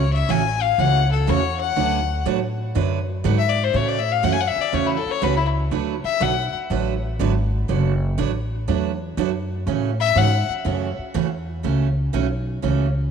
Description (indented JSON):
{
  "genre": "country, western swing",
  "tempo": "122 BPM",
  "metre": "4/4",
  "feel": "swing 66% on 8ths",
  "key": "A major",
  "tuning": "A4 = 441 Hz",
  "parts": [
    { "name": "clear fiddle", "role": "melody", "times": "0.0-6.5, 10.0-10.5 s", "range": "E4 to G#5", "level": "-22 LUFS", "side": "left 10 dB", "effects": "none" },
    { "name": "picked steel-string acoustic guitar", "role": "accompaniment", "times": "0.0-12.9 s", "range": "C#3 to B4", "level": "-24 LUFS", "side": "right 12 dB", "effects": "none" },
    { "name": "upright bass", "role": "bass", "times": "0.0-13.1 s", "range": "F#1 to A2", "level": "-22 LUFS", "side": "equal", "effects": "none" }
  ],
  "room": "moderate plate reverb, RT60 3.5 s",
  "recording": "1960s-style stereo with parts hard left and right",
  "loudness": "-19 LUFS",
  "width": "side -6 dB against mid",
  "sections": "0.0-13.1 A section",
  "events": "fiddle solo 0.0-13.1",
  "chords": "0.0 A6; 1.8 D6; 3.7 A6; 5.7 D6; 9.7 A6"
}